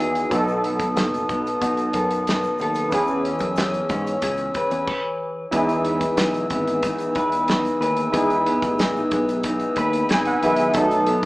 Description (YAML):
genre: indie pop, bedroom pop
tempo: 92 BPM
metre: 4/4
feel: straight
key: E major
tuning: A4 = 436 Hz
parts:
  - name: electric guitar at the edge of break-up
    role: accompaniment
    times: 0.0-11.3 s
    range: B2 to B4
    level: -24 LUFS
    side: left 1 dB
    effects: vibrato effect
  - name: warm analog keys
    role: accompaniment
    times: 0.0-11.3 s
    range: D#3 to B5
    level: -24 LUFS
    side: right 1 dB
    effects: chorus
  - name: glass harmonica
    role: sustained chords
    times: 0.0-11.3 s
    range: B4 to E6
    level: -25 LUFS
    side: left 1 dB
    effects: none
  - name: fingered electric bass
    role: bass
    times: 0.0-11.3 s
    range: F#1 to B2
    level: -29 LUFS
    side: equal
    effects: none
  - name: damped 70s drum kit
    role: drums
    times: 0.0-11.3 s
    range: crash cymbal, hi-hat, kick drum, snare drum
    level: -27 LUFS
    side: equal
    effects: none
  - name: egg shaker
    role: percussion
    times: 0.0-11.1 s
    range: none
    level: -50 LUFS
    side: left 2 dB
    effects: none
room: moderate large studio reverb, RT60 0.9 s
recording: band playing live in one room, small speaker sound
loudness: -19 LUFS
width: side -20 dB against mid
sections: 0.0-5.5 A section; 5.5-11.3 A section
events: stop 4.9-5.5; synth keys fill 9.4-10.7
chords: 0.3 B7; 2.9 E6; 5.5 Emaj7; 10.7 B7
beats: | 0.31 0.96 1.61 2.27 | 2.92 3.57 4.22 4.88 | 5.53 6.18 6.83 7.49 | 8.14 8.79 9.44 10.10 | 10.75